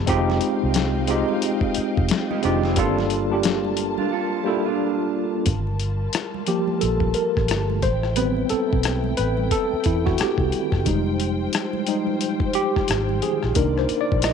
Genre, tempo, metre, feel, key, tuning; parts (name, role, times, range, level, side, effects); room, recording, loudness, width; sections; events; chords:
R&B, neo-soul; 89 BPM; 4/4; swing 60% on 16ths; A4 = 440 Hz
tine electric piano; accompaniment; 0.0-14.3 s; F3 to Eb5; -22 LUFS; equal; overdrive, fast stereo tremolo
muted symphonic string section; sustained chords; 0.0-14.3 s; C3 to A5; -33 LUFS; left 2 dB
vintage muted fingered electric bass; bass; 0.0-14.3 s; F1 to E2; -25 LUFS; equal
dusty soul sampler-style drum kit; drums; 0.1-14.3 s; hi-hat, kick drum, rim click, snare drum; -25 LUFS; left 3 dB; overdrive
congas; percussion; 0.1-14.3 s; -35 LUFS; right 14 dB
electric guitar through a small old amp; second line; 2.3-5.4 s; Ab3 to A4; -27 LUFS; right 15 dB; spring reverb
light reverb; 1960s-style stereo; -20 LUFS; side -6 dB against mid
0.0-5.5 A section; 5.5-14.3 B section
drums muted 4.1-5.5; tine electric piano solo 5.5-14.3
0.1 Fm9; 2.8 Gm9; 7.8 Am9; 10.9 Fm9; 13.6 Cm9